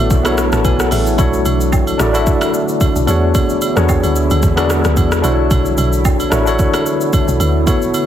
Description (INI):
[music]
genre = amapiano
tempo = 111 BPM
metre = 4/4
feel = swing 55% on 16ths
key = B dorian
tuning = A4 = 440 Hz
[part]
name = tine electric piano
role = accompaniment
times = 0.0-8.1 s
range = B3 to B5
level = -17 LUFS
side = left 2 dB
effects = medium stereo tremolo
[part]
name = deep dark ambient pad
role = sustained chords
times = 0.0-8.1 s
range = D3 to F#4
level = -22 LUFS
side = right 2 dB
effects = chorus, built-in reverb
[part]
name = deep log drum bass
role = bass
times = 0.0-7.7 s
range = A1 to E2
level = -16 LUFS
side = equal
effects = none
[part]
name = deep house drum kit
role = drums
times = 0.1-8.1 s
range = hi-hat, kick drum, rim click, shaker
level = -17 LUFS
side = equal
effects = overdrive
[part]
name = agogo bells and woodblock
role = percussion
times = 0.2-8.1 s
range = none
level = -25 LUFS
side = right 5 dB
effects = none
[sound]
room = little or no reverb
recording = heavily compressed radio sound, multiband compression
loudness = -12 LUFS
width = side -10 dB against mid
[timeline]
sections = 0.0-8.1 A section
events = none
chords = 0.0 Bm11; 3.1 E13; 5.2 Bm11